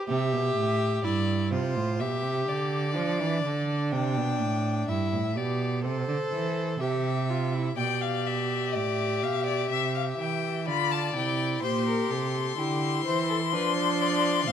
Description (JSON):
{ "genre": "classical, baroque-style fugue for string quartet", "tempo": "62 BPM", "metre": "4/4", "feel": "straight", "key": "C major", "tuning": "A4 = 439 Hz", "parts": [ { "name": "warm viola", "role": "accompaniment", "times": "0.0-14.5 s", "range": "C4 to A4", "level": "-30 LUFS", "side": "right 1 dB", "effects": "none" }, { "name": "rich violin", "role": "second line", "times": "0.1-14.5 s", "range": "G4 to G5", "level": "-33 LUFS", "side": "left 6 dB", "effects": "none" }, { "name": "rich cello", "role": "bass", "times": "0.1-14.5 s", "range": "G2 to F3", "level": "-29 LUFS", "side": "right 4 dB", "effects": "none" }, { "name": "rich violin", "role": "melody", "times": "7.8-14.5 s", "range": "D5 to C6", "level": "-29 LUFS", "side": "left 12 dB", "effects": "none" } ], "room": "moderate recital hall reverb, RT60 1.4 s", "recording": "none", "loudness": "-25 LUFS", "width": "side -9 dB against mid", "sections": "0.0-7.8 A section; 7.8-14.5 B section", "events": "none", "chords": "0.1 C; 2.0 G/B; 3.9 C; 7.8 G7/B; 9.7 C; 11.6 C7/Bb; 13.5 F5", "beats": "| 0.09 1.04 2.00 2.96 | 3.93 4.89 5.85 6.81 | 7.78 8.75 9.71 10.67 | 11.63 12.58 13.53 14.48" }